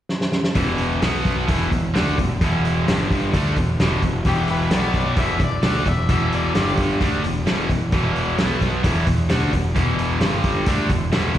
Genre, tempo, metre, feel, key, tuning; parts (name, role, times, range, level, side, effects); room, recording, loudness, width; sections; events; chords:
classic rock; 130 BPM; 4/4; straight; E minor; A4 = 440 Hz
vintage drum kit; drums; 0.1-11.4 s; hi-hat, kick drum, snare drum; -22 LUFS; equal
cranked stack guitar; riff; 0.6-11.4 s; E2 to D4; -21 LUFS; equal; overdrive, slapback echo
fuzz picked electric bass; bass; 0.6-11.4 s; E1 to D2; -23 LUFS; equal; overdrive
octave-fuzz lead guitar; second line; 4.3-6.8 s; G4 to E5; -27 LUFS; left 5 dB; distortion, digital delay, plate reverb, slapback echo
light reverb; live gig heard through the venue's PA, recital hall reverb; -18 LUFS; side -11 dB against mid
0.6-11.4 A section
drum fill 0.1-0.6
0.0 N.C.; 0.6 E5; 1.0 B5; 1.5 E5; 2.9 G5; 3.3 E5; 4.7 B5; 5.2 E5; 6.5 G5; 7.0 E5; 8.4 B5; 8.8 E5; 10.2 G5; 10.7 E5